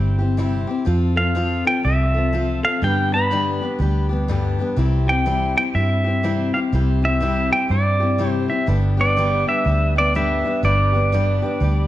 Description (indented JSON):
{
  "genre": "honky-tonk and classic country",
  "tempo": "123 BPM",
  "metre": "4/4",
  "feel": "swing 62% on 8ths",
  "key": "C major",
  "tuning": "A4 = 439 Hz",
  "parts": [
    { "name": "pedal steel guitar", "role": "melody", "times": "0.0-11.9 s", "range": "D5 to B5", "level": "-21 LUFS", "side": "right 1 dB", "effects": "none" },
    { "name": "picked steel-string acoustic guitar", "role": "accompaniment", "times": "0.0-11.9 s", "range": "G2 to A4", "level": "-23 LUFS", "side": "left 3 dB", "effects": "none" },
    { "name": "vintage muted fingered electric bass", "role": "bass", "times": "0.0-11.9 s", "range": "G1 to G2", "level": "-20 LUFS", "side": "right 1 dB", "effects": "none" }
  ],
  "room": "moderate large studio reverb, RT60 1.2 s",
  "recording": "none",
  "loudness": "-17 LUFS",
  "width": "side -14 dB against mid",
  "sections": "0.0-11.9 A section",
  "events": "none",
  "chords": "0.0 C; 0.9 F; 2.8 G; 4.8 C; 8.7 G"
}